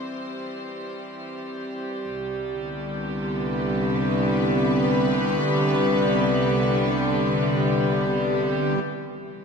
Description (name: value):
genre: ambient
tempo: free time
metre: none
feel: none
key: unclear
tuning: A4 = 440 Hz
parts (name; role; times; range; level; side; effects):
- rich studio string section; sustained chords; 0.0-9.4 s; C2 to C5; -22 LUFS; equal; none
- organ-like drone; drone; 2.8-9.4 s; C3 to G3; -28 LUFS; equal; ensemble chorus, built-in reverb
room: wet concert hall reverb, RT60 2.1 s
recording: none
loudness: -21 LUFS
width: side -5 dB against mid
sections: 0.0-8.8 A section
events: fade-in on string section 0.0-8.8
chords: 0.0 C; 2.1 G/C; 8.8 C